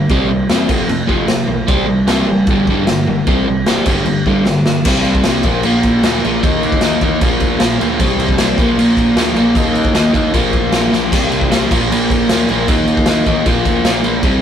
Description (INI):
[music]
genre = punk rock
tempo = 153 BPM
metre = 4/4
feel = straight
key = unclear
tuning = A4 = 440 Hz
[part]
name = crunchy overdriven guitar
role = riff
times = 0.0-14.4 s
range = F2 to Eb4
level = -14 LUFS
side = equal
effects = none
[part]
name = growling picked electric bass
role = bass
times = 0.0-14.4 s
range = F1 to G2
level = -24 LUFS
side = equal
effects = overdrive
[part]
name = raw garage drum kit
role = drums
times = 0.1-14.3 s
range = crash cymbal, kick drum, snare drum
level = -16 LUFS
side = equal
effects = none
[sound]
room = moderate small room reverb, RT60 0.6 s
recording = rough rehearsal-room recording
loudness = -12 LUFS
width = side -9 dB against mid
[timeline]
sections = 0.0-4.8 A section; 4.8-14.4 B section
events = drum fill 4.5-4.8, 10.9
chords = 0.1 C; 0.7 F5; 1.7 C5; 2.5 G5; 3.3 C5; 3.9 G5; 4.8 C5; 5.4 Bb; 6.4 Eb5; 7.2 Bb; 8.0 C5; 8.6 Bb; 9.6 Eb5; 10.3 Bb; 11.1 C5; 11.7 Bb; 12.7 Eb5; 13.5 Bb